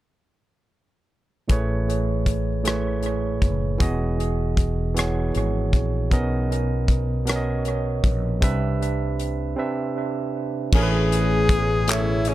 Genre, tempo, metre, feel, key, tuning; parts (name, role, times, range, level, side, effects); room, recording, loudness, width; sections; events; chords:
slow six-eight R&B; 52 BPM (dotted quarters); 6/8; straight; A lydian; A4 = 443 Hz
barky tine electric piano; accompaniment; 1.5-12.3 s; A2 to E5; -25 LUFS; right 3 dB; overdrive, analog delay
mellow fretless electric bass; bass; 1.5-12.3 s; E1 to C2; -24 LUFS; equal; lush chorus
damped 70s drum kit; drums; 1.5-12.3 s; crash cymbal, handclaps, hi-hat, kick drum, rim click; -22 LUFS; equal
lush unison pad; sustained chords; 10.7-12.3 s; B2 to G#4; -34 LUFS; left 3 dB
breathy tenor saxophone; melody; 10.8-12.3 s; C#4 to G#4; -24 LUFS; left 3 dB; analog delay
small room ambience; echo-heavy mix; -20 LUFS; side -15 dB against mid
1.5-10.7 A section; 10.7-12.3 B section
drums muted 9.6-10.7
1.5 Amaj9; 3.8 Emaj9; 6.1 Bmaj9; 8.4 Cmaj9; 10.7 Amaj9